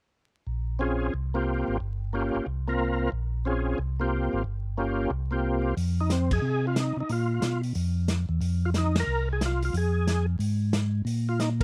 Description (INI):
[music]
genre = soul jazz organ trio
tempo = 181 BPM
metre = 4/4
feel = swing 64% on 8ths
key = F minor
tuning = A4 = 440 Hz
[part]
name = mellow tonewheel organ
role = bass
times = 0.5-11.6 s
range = G1 to C3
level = -29 LUFS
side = equal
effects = none
[part]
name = percussive tonewheel organ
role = melody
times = 0.8-11.6 s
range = Bb3 to Bb4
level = -30 LUFS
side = equal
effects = slow rotary speaker, overdrive, chorus vibrato
[part]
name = warm soul drum kit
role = drums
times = 5.8-11.6 s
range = hi-hat, kick drum, ride cymbal, snare drum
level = -34 LUFS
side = equal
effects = none
[sound]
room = little or no reverb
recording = vinyl crackle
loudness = -28 LUFS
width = mono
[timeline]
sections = 0.5-5.8 A section; 5.8-11.6 B section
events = band accent 6.3, 8.9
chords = 0.5 Bbm7; 1.1 C7sus4; 1.8 Gm7b5; 2.5 C7sus4; 3.1 Bbm7; 3.8 C7sus4; 4.4 Gm7b5; 5.1 C7sus4; 5.8 Fm; 7.1 Bb5; 8.4 Fm; 11.1 Bb5